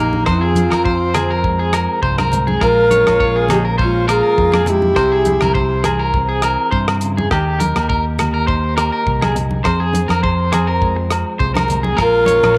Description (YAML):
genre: highlife guitar band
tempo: 102 BPM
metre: 4/4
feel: swing 54% on 16ths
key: F minor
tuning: A4 = 440 Hz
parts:
  - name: wooden-headed alto flute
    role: melody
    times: 0.0-5.9, 12.0-12.6 s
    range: Eb4 to Bb4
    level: -17 LUFS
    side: equal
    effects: none
  - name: raspy alto saxophone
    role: second line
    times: 0.0-5.8, 12.0-12.6 s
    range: Bb3 to F4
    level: -29 LUFS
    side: equal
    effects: none
  - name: fingerpicked steel-string acoustic guitar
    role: accompaniment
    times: 0.0-12.6 s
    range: F2 to Ab4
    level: -26 LUFS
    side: equal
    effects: none
  - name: electric guitar at the edge of break-up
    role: arpeggios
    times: 0.0-12.6 s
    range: G4 to Db5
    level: -22 LUFS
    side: equal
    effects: tremolo, tape echo
  - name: fingered electric bass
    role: bass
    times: 0.0-12.6 s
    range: Bb1 to G2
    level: -22 LUFS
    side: equal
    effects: none
  - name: congas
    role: percussion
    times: 0.1-12.6 s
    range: none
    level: -26 LUFS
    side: equal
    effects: none
  - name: damped 70s drum kit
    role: drums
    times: 0.3-12.6 s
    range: hi-hat, kick drum, rim click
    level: -25 LUFS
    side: equal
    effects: none
  - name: agogo bells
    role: percussion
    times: 0.3-12.6 s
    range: none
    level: -28 LUFS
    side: equal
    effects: none
room: moderate spring reverb, RT60 1.8 s, small room ambience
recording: none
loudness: -16 LUFS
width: mono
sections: 0.0-12.6 A section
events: none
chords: 0.3 Fm; 2.6 Bbm7; 5.0 C; 7.3 Eb; 9.6 Fm; 12.0 Bbm7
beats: | 0.27 0.86 1.44 2.03 | 2.62 3.20 3.79 4.38 | 4.96 5.55 6.13 6.72 | 7.31 7.89 8.48 9.06 | 9.65 10.23 10.82 11.40 | 11.99 12.57